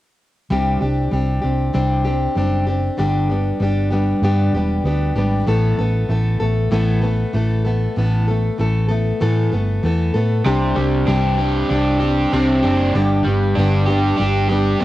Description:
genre	rock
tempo	96 BPM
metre	4/4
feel	straight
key	unclear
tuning	A4 = 442 Hz
part	picked plugged-in steel-string acoustic guitar	accompaniment	0.5-14.8 s	G2 to A4	-19 LUFS	left 1 dB	cassette tape
part	hollow-body short-scale fingered electric bass	bass	0.5-14.8 s	E1 to A2	-19 LUFS	equal	none
part	overdriven electric guitar	riff	10.5-14.8 s	G2 to G4	-20 LUFS	right 2 dB	cassette tape
room	light reverb, studio reverb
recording	home recording on cassette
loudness	-16 LUFS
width	side -15 dB against mid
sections	0.5-10.5 A section; 10.5-14.8 B section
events	none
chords	0.5 Csus2; 3.0 G; 5.5 Asus2; 10.5 Csus2; 12.9 G

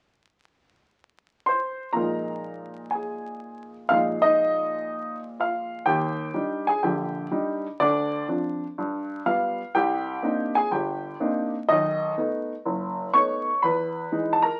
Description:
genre	solo jazz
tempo	123 BPM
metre	4/4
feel	swing 68% on 8ths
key	unclear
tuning	A4 = 440 Hz
part	warm baby grand piano	solo	1.5-14.6 s	F#1 to Db6	-26 LUFS	equal	none
room	moderate studio reverb, RT60 0.6 s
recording	very old 78 rpm record, vinyl crackle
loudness	-26 LUFS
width	mono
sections	0.0-1.9 A section; 1.9-5.8 B section; 5.8-14.6 C section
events	none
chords	0.0 N.C.; 1.9 Bb7sus4; 5.8 Ebmaj7; 7.8 Dm7; 8.8 G7; 9.7 Cm9; 11.7 B7; 13.6 Emaj7

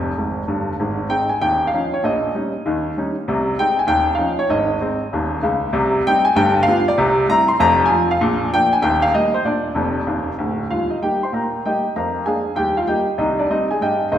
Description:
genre	jazz, stride piano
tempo	194 BPM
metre	4/4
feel	swing 65% on 8ths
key	Ab major, Eb major from 5.7 s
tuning	A4 = 440 Hz
part	clear baby grand piano	solo	0.0-14.2 s	Db1 to C6	-16 LUFS	equal	none
room	wet recital hall reverb, RT60 1.8 s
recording	recorded in a church or concert hall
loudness	-16 LUFS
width	side -10 dB against mid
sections	0.8-10.7 A section; 10.7-14.2 B section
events	grand piano fill 0.0-0.8, 9.8-10.7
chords	0.0 Fmadd9; 0.8 Ab; 1.4 Ebsus2; 2.0 Eb7/Bb; 3.3 Ab/C; 3.9 Ebsus2; 4.5 Ab; 5.7 Cm; 6.4 G7; 7.0 C; 7.6 F5; 8.2 Bb; 8.8 Eb; 9.5 Bb; 10.7 Eb; 11.9 Bb7/F; 12.6 Eb; 13.2 Cm

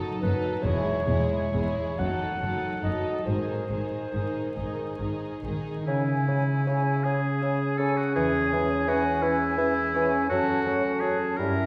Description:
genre	classical, slow romantic movement for symphony orchestra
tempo	42-58 BPM (dotted quarters)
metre	6/8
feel	rubato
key	C# minor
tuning	A4 = 440 Hz
part	rich studio violin section	melody	0.0-5.9 s	G#4 to A4	-42 LUFS	equal	none
part	dark studio violin section	second line	0.0-5.9 s	D#4 to E4	-40 LUFS	equal	none
part	dark studio viola section	accompaniment	0.0-5.9 s	D#3 to G#3	-37 LUFS	equal	none
part	concert harp	arpeggios	0.0-11.7 s	E2 to E5	-34 LUFS	equal	none
part	warm clarinet	second line	0.2-11.7 s	C#4 to F#5	-33 LUFS	equal	none
part	dark studio double bass section	bass	0.2-5.5 s	E1 to G#1	-36 LUFS	equal	none
part	warm studio cello section	bass	0.2-5.5 s	E2 to G#2	-37 LUFS	equal	none
part	clear oboe	second line	5.9-11.7 s	E4 to Bb4	-32 LUFS	equal	none
part	flute section	second line	5.9-11.7 s	E5 to A5	-35 LUFS	equal	none
part	warm bassoon	accompaniment	5.9-11.5 s	C#3 to G3	-32 LUFS	equal	none
part	warm French horn section	sustained chords	5.9-11.7 s	C#4 to A4	-34 LUFS	equal	none
room	wet scoring stage reverb, RT60 1.7 s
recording	heard from further back in the room, vinyl crackle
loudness	-26 LUFS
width	mono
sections	0.0-5.9 A section; 5.9-11.7 B section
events	none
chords	0.0 D#dim/F#; 0.6 C#m/E; 2.0 D#dim/F#; 3.3 G#; 5.9 C#m; 8.2 C#m/E; 10.3 F#m

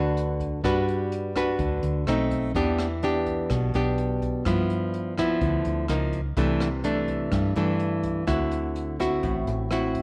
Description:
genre	bossa nova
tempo	126 BPM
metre	4/4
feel	straight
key	unclear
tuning	A4 = 440 Hz
part	nylon-string guitar	accompaniment	0.0-10.0 s	G2 to B4	-27 LUFS	equal	none
part	fingered electric bass	bass	0.0-10.0 s	A1 to G2	-31 LUFS	equal	none
part	jazz brush drum kit	drums	0.2-10.0 s	hi-hat, kick drum, rim click	-38 LUFS	equal	none
room	light reverb, studio reverb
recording	none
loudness	-26 LUFS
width	mono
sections	0.0-10.0 A section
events	none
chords	0.0 Gmaj7; 2.1 B7b9; 2.6 Em7; 4.5 G6; 5.9 C#69; 6.4 C69; 8.3 D9

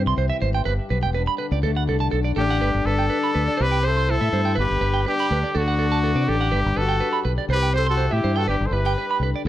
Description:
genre	highlife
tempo	123 BPM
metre	4/4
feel	straight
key	G major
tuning	A4 = 440 Hz
part	fingerpicked old ladder-braced acoustic guitar	accompaniment	0.0-9.5 s	G2 to G4	-30 LUFS	left 8 dB	none
part	fingered electric bass	bass	0.0-9.5 s	E1 to C3	-22 LUFS	equal	none
part	electric guitar at the edge of break-up	arpeggios	0.1-9.4 s	A4 to C6	-26 LUFS	right 7 dB	analog delay
part	bright trumpet	melody	2.4-9.2 s	F#4 to C5	-24 LUFS	equal	none
part	breathy alto saxophone	second line	2.4-9.2 s	D4 to A4	-28 LUFS	left 5 dB	plate reverb
room	light reverb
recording	none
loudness	-19 LUFS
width	side -13 dB against mid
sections	0.0-2.6 A section; 2.6-9.5 B section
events	none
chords	0.0 C; 0.7 G; 1.6 D; 2.6 G; 3.6 C; 4.6 G; 5.5 D; 6.5 G; 7.5 C; 8.5 G

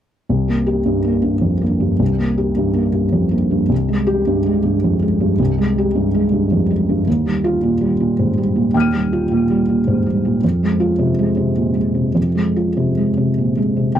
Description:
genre	neoclassical minimalist piano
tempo	106 BPM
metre	3/4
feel	rubato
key	unclear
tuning	A4 = 440 Hz
part	felt-muted upright piano	solo	0.3-14.0 s	C2 to Eb7	-15 LUFS	equal	none
room	light reverb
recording	dry, close 1970s-style studio recording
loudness	-15 LUFS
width	side -10 dB against mid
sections	0.3-14.0 A section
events	none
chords	0.3 C5; 3.7 Abmaj7/C; 7.1 Ebadd9; 10.4 Fm

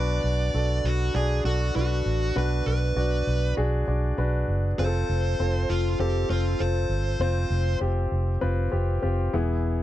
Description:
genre	piano-driven pop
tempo	99 BPM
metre	4/4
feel	straight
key	unclear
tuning	A4 = 440 Hz
part	dark smooth lead guitar	melody	0.0-7.8 s	F4 to D5	-30 LUFS	right 1 dB	overdrive
part	clear concert grand piano	accompaniment	0.0-9.8 s	B2 to D5	-29 LUFS	left 2 dB	none
part	vintage muted fingered electric bass	bass	0.0-9.8 s	E1 to B1	-25 LUFS	right 1 dB	none
room	little or no reverb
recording	dry, close 1970s-style studio recording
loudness	-23 LUFS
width	side -13 dB against mid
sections	0.0-9.8 A section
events	none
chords	0.0 Bm; 4.8 F; 9.3 E

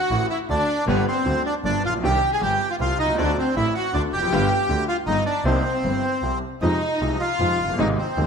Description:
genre	tango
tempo	157 BPM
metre	3/4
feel	rubato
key	C minor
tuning	A4 = 440 Hz
part	bandoneon	melody	0.0-8.3 s	B3 to Ab5	-24 LUFS	right 1 dB	none
part	warm chamber violin section	second line	0.0-8.3 s	B3 to Ab4	-26 LUFS	left 2 dB	none
part	bright upright piano	accompaniment	0.1-8.3 s	Eb1 to G4	-26 LUFS	left 1 dB	none
part	clear double bass	bass	0.1-8.3 s	F1 to F2	-26 LUFS	right 2 dB	none
room	moderate scoring stage reverb, RT60 1.5 s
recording	none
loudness	-20 LUFS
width	side -6 dB against mid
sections	0.0-6.6 A section; 6.6-8.3 B section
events	none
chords	0.0 D; 0.9 G; 2.0 Cmadd9; 3.2 D7; 4.3 G7; 5.5 Cm7; 6.6 Fm7

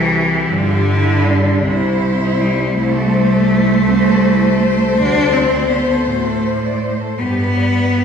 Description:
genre	classical, lyrical piece for cello ensemble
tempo	54 BPM (dotted quarters)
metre	6/8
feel	rubato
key	unclear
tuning	A4 = 440 Hz
part	rich cello	melody	0.0-8.0 s	G4 to C5	-22 LUFS	left 6 dB	none
part	warm cello	second line	0.0-8.0 s	D4 to D5	-23 LUFS	right 4 dB	none
part	clear cello	accompaniment	0.0-8.0 s	C3 to D4	-16 LUFS	equal	none
part	rich cello	bass	0.0-8.0 s	C2 to A2	-18 LUFS	right 1 dB	none
room	wet recital hall reverb, RT60 1.5 s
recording	recorded in a church or concert hall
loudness	-13 LUFS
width	side -7 dB against mid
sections	0.0-8.0 A section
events	none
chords	0.0 C; 0.5 G5; 1.6 C; 2.7 Am/C; 5.0 D7(no3); 7.2 G

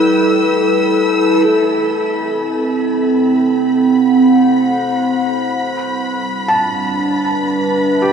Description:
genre	ambient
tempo	free time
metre	none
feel	none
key	unclear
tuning	A4 = 436 Hz
part	warbly tape-like pad	sustained chords	0.0-8.1 s	G3 to G5	-13 LUFS	right 1 dB	chorus, built-in reverb
part	rich studio violin section	texture	0.0-8.1 s	B5 to E6	-23 LUFS	left 1 dB	none
part	felt-muted upright piano	arpeggios	6.5-8.1 s	G4 to A5	-20 LUFS	equal	diffuse ambient delay
room	wet shimmer reverb, RT60 6.9 s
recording	cassette tape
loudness	-12 LUFS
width	side -6 dB against mid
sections	0.0-1.5 A section; 1.5-8.1 B section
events	fade-in on felt piano 1.5-8.1; fade-in on violin section 1.5-8.1; filter sweep on ambient pad 1.5-8.1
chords	0.0 G69; 1.5 Am69/C; 5.5 Cmaj7

